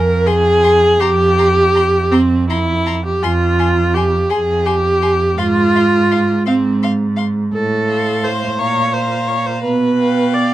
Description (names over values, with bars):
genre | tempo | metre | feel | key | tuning
classical, slow romantic movement for string quartet | 53-58 BPM (dotted quarters) | 6/8 | rubato | F minor | A4 = 440 Hz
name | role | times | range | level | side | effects
rich viola | accompaniment | 0.0-10.5 s | C4 to D5 | -14 LUFS | right 1 dB | none
rich cello | bass | 0.0-10.5 s | F2 to B2 | -17 LUFS | right 2 dB | none
warm violin | melody | 0.3-10.5 s | G5 to C6 | -28 LUFS | left 9 dB | none
rich violin | second line | 0.3-10.5 s | F5 to Bb5 | -25 LUFS | left 3 dB | none
room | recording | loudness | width
light reverb | dark, warm production | -12 LUFS | side -14 dB against mid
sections
0.0-10.5 A section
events
none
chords
0.0 Fm; 1.0 C5/F; 3.2 Fm; 5.4 Fm/Ab; 7.5 F/A; 8.6 Bb5; 9.6 G7/B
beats
| 1.00 2.12 | 3.22 4.29 | 5.37 6.46 | 7.53 8.59 | 9.63